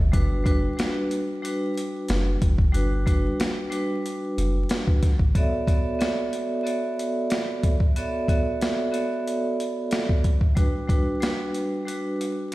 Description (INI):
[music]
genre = hip hop, boom-bap hip-hop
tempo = 92 BPM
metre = 4/4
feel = swing 56% on 16ths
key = B minor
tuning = A4 = 441 Hz
[part]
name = soft dub sub bass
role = bass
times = 0.0-5.3 s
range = F#1 to A1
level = -24 LUFS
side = equal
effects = none
[part]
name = vibraphone with medium hard mallets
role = accompaniment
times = 0.1-12.5 s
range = G3 to E5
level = -26 LUFS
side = right 1 dB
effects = high-pass filter, low-pass filter
[part]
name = boom bap sampler-style drum kit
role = drums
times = 0.1-12.5 s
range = hi-hat, kick drum, snare drum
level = -23 LUFS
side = equal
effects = none
[sound]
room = light reverb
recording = played on a big sound system in a bare room, stone room reverb, vinyl crackle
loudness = -22 LUFS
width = side -18 dB against mid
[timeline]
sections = 0.0-5.4 A section; 5.4-12.5 B section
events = none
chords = 0.1 Gmaj7; 5.4 Bm11; 10.6 Gmaj7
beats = | 0.14 0.79 1.44 2.09 | 2.74 3.40 4.05 4.70 | 5.35 6.00 6.66 7.31 | 7.96 8.61 9.27 9.92 | 10.57 11.22 11.87 12.53